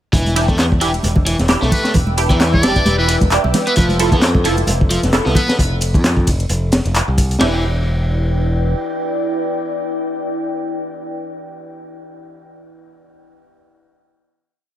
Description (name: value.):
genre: breakbeat, breaks.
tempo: 132 BPM.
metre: 4/4.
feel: swing 56% on 16ths.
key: E phrygian.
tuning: A4 = 439 Hz.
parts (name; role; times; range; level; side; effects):
deep dark ambient pad; sustained chords; 1.1-11.5 s; E4 to E6; -25 LUFS; left 1 dB; chorus, built-in reverb, sidechain pumping.
overdriven electric guitar; riff; 0.1-7.6 s; E3 to D4; -22 LUFS; equal; tube saturation, digital delay.
modern bright picked electric bass; bass; 0.1-8.7 s; E1 to F2; -18 LUFS; equal; none.
crunchy breakbeat drum kit; drums; 0.1-7.5 s; hi-hat, kick drum, ride cymbal, snare drum; -17 LUFS; equal; none.
punchy analog drum machine; drums; 0.1-7.4 s; handclaps, hi-hat, ride cymbal; -24 LUFS; equal; none.
congas; percussion; 0.1-5.6 s; none; -23 LUFS; right 2 dB; none.
band-passed chord stab; stabs; 0.4-11.5 s; D4 to A4; -23 LUFS; right 4 dB; phaser, analog chorus, digital delay.
trumpet with metal mute; melody; 1.7-5.5 s; B4 to D5; -22 LUFS; equal; old record sound, vintage 12-bit sampler grit, digital delay.
room: studio reverb.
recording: none.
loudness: -14 LUFS.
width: side -12 dB against mid.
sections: 0.1-7.4 drop; 7.4-11.0 final chord.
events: drop 0.1-7.4.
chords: 0.1 Em7; 3.8 Fmaj7; 7.4 Em7.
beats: | 0.13 0.59 1.04 1.50 | 1.95 2.41 2.86 3.32 | 3.77 4.22 4.68 5.13 | 5.59 6.04 6.50 6.95 | 7.41 7.86 8.32 8.77 | 9.22 9.68 10.13 10.59.